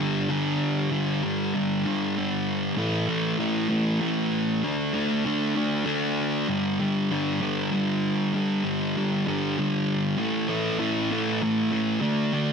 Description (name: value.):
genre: rock.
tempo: 65 BPM (dotted quarters).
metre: 6/8.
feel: straight.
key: unclear.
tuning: A4 = 440 Hz.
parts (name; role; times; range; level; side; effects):
thick fuzz guitar; solo; 0.0-12.5 s; G2 to D4; -23 LUFS; equal; distortion.
room: moderate large studio reverb, RT60 1.1 s, digital ambience.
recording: none.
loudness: -23 LUFS.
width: side -6 dB against mid.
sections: 0.0-10.2 A section; 10.2-12.5 B section.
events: none.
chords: 0.0 G5; 2.8 A5; 4.6 D5; 6.5 G5; 10.2 A5; 12.0 D5.